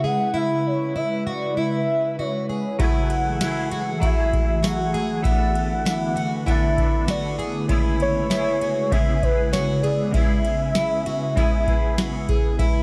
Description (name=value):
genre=dream pop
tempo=98 BPM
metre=4/4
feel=straight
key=unclear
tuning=A4 = 440 Hz
part: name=warm velvety synth lead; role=melody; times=0.0-12.3 s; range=B4 to F#5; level=-28 LUFS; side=equal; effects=chorus, tape echo
part: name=ethereal airy pad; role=sustained chords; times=0.0-12.8 s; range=C#3 to B4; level=-29 LUFS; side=equal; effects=ensemble chorus, built-in reverb
part: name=fingerpicked plugged-in twelve-string acoustic guitar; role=arpeggios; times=0.0-12.8 s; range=E4 to G#4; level=-30 LUFS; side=equal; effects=subtle chorus, tape echo
part: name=direct-recorded clean electric guitar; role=accompaniment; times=2.8-12.8 s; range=C#3 to A4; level=-33 LUFS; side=equal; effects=tremolo, ensemble chorus
part: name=booming analog drum machine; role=drums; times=2.8-12.7 s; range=kick drum, ride cymbal, snare drum, tambourine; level=-25 LUFS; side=equal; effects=none
room=light reverb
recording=dark, warm production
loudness=-22 LUFS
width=mono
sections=0.0-12.6 A section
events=none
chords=0.0 C#m7; 2.8 F#m9; 5.2 E7sus4; 7.7 C#m7